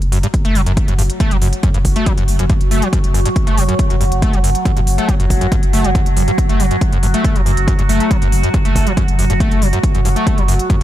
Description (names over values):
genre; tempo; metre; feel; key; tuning
driving peak-time techno; 139 BPM; 4/4; straight; F# minor; A4 = 440 Hz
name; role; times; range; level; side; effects
saturated sub bass; bass; 0.0-10.8 s; F#1; -17 LUFS; equal; tube saturation, sidechain pumping, low-pass filter
overtone-sweeping drone; drone; 0.3-10.8 s; F#3 to F#4; -22 LUFS; right 2 dB; chorus, built-in reverb, sidechain pumping
electronic hi-hat; drums; 0.0-10.8 s; none; -27 LUFS; equal; overdrive, sidechain pumping on hats
screaming distorted acid line; riff; 0.1-10.8 s; F#2 to A3; -20 LUFS; equal; distortion, analog chorus, sidechain pumping, tape echo
electronic kick drum; drums; 0.3-10.8 s; none; -16 LUFS; equal; overdrive
room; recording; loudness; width
little or no reverb; none; -12 LUFS; side -13 dB against mid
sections
0.0-10.8 A section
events
none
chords
0.0 F#m